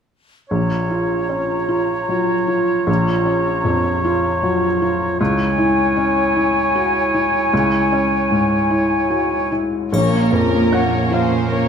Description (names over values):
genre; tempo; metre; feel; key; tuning
cinematic, emotional film score for orchestra; 51 BPM (dotted quarters); 6/8; rubato; Bb minor; A4 = 436 Hz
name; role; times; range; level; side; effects
clear clarinet; second line; 0.5-9.6 s; Fb4 to F4; -24 LUFS; right 1 dB; none
clear oboe; second line; 0.5-9.6 s; Db5; -22 LUFS; right 2 dB; none
small flute group; second line; 0.5-9.6 s; Ab5 to Bb5; -23 LUFS; left 3 dB; none
felt-muted upright piano; accompaniment; 0.5-11.7 s; Bb1 to Gb5; -19 LUFS; left 1 dB; none
warm studio violin section; melody; 9.9-11.7 s; Bb4 to C5; -25 LUFS; left 3 dB; none
dark studio violin section; second line; 9.9-11.7 s; Bb3 to Db5; -23 LUFS; left 3 dB; none
dark studio viola section; accompaniment; 9.9-11.7 s; F3 to Db4; -23 LUFS; right 1 dB; none
warm studio cello section; bass; 9.9-11.7 s; Bb2; -20 LUFS; right 6 dB; none
triangle; percussion; 9.9-11.5 s; none; -38 LUFS; left 3 dB; none
room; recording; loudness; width
wet scoring stage reverb, RT60 1.5 s; none; -15 LUFS; side -7 dB against mid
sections
0.5-9.9 A section; 9.9-11.7 B section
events
none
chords
0.5 Bbm; 5.2 Dbm; 9.9 Bbm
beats
| 0.51 1.70 | 2.88 4.04 | 5.19 6.35 | 7.52 8.70 | 9.93 11.13